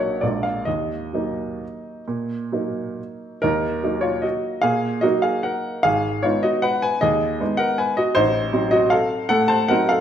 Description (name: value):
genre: classical, piano waltz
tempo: 122-171 BPM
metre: 3/4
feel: rubato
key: Eb minor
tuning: A4 = 443 Hz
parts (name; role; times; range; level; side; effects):
- clear baby grand piano; solo; 0.0-10.0 s; Ab1 to A5; -19 LUFS; equal; none
room: moderate recital hall reverb, RT60 1.4 s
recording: none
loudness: -19 LUFS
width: side -9 dB against mid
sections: 0.0-3.4 A section; 3.4-10.0 A section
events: none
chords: 0.2 Bb7; 0.7 Ebm; 5.9 Abm; 8.2 Adim7